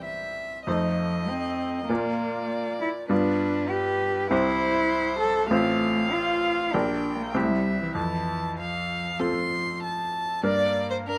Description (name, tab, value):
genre	quick classical-period movement for piano trio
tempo	98 BPM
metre	4/4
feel	straight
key	F major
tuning	A4 = 439 Hz
part	warm violin	melody	0.0-11.2 s	Bb4 to C6	-32 LUFS	equal	none
part	dark cello	second line	0.0-11.2 s	E3 to A4	-30 LUFS	equal	none
part	bright grand piano	accompaniment	0.0-11.2 s	A1 to D5	-31 LUFS	equal	none
room	light reverb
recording	close, detailed microphones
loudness	-26 LUFS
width	mono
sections	0.0-10.5 A section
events	none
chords	0.0 C; 0.7 F7; 1.9 Bb; 3.1 G7; 4.3 C; 5.5 F/A; 6.7 Gm/Bb; 7.3 C; 8.0 F; 10.5 Gm